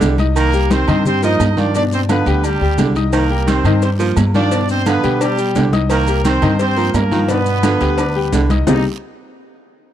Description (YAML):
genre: latin, salsa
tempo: 173 BPM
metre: 4/4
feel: straight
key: C minor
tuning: A4 = 440 Hz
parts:
  - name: brilliant horn section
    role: melody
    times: 0.0-8.8 s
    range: G3 to Eb5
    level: -20 LUFS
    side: right 2 dB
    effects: none
  - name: warm baritone saxophone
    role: second line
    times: 0.0-8.8 s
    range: C3 to F3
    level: -21 LUFS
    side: right 5 dB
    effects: none
  - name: bright baby grand piano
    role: accompaniment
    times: 0.0-8.8 s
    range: B2 to Eb6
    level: -21 LUFS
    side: left 7 dB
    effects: none
  - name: upright bass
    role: bass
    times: 0.0-8.8 s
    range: C2 to B2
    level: -17 LUFS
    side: equal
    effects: none
  - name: congas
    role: percussion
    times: 0.0-8.8 s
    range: none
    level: -22 LUFS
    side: left 2 dB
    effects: none
  - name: guiro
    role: percussion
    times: 0.0-8.8 s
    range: none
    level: -35 LUFS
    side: right 9 dB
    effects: none
  - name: maracas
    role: percussion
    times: 0.0-8.8 s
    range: none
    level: -35 LUFS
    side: left 9 dB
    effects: none
  - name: timbales and agogo bells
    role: percussion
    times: 0.0-8.8 s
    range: none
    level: -26 LUFS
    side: right 7 dB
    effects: none
  - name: cowbell and bongos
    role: percussion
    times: 3.1-8.8 s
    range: none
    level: -26 LUFS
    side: left 6 dB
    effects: none
room: little or no reverb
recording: dry, close 1970s-style studio recording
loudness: -13 LUFS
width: side -11 dB against mid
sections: 0.0-8.7 A section; 8.7-9.9 B section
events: none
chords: 0.4 Cm7; 1.7 G7; 3.1 Cm7; 4.5 G7; 5.9 Cm7; 7.3 G7; 8.7 Cm7